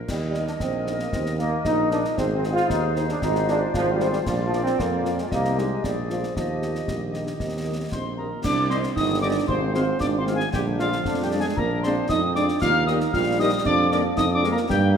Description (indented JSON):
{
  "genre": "military-style march for wind band",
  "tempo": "115 BPM",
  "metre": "2/4",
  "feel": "straight",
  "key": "Eb major",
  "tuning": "A4 = 442 Hz",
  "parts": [
    { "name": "mellow woodwind section", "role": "second line", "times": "0.0-14.5 s", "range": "F4 to F5", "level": "-33 LUFS", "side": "left 2 dB", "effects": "none" },
    { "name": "clear tuba", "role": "bass", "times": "0.0-15.0 s", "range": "G1 to G2", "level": "-26 LUFS", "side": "right 2 dB", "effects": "none" },
    { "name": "warm trombone section", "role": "sustained chords", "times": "0.1-15.0 s", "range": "D3 to F4", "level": "-27 LUFS", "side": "right 1 dB", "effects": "none" },
    { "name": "concert snare drum, clash cymbals and concert bass drum", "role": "drums", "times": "0.1-14.9 s", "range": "none", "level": "-32 LUFS", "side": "left 2 dB", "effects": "none" },
    { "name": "dark French horn section", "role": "accompaniment", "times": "0.3-14.5 s", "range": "G3 to C5", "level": "-34 LUFS", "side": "left 6 dB", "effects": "none" },
    { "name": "dark trumpet section", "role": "melody", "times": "0.4-14.8 s", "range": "F4 to F5", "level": "-33 LUFS", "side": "equal", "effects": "none" },
    { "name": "dark euphonium", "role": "second line", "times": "6.9-15.0 s", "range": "F3 to F4", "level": "-26 LUFS", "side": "right 4 dB", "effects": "none" },
    { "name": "wooden piccolo", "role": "second line", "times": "7.9-14.9 s", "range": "F5 to F6", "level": "-27 LUFS", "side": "left 3 dB", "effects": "none" }
  ],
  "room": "wet scoring stage reverb, RT60 1.8 s",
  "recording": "none",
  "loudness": "-21 LUFS",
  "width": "side -7 dB against mid",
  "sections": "0.0-8.4 A section; 8.4-15.0 B section",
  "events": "none",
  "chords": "0.1 Eb5; 2.2 Ab; 3.2 Fm/Ab; 4.3 Bb; 5.3 Cm; 5.8 Bb7; 6.4 Eb; 8.4 Cm; 9.5 Fm/Ab; 10.5 Bb7; 12.6 Eb; 13.7 Bb5/F"
}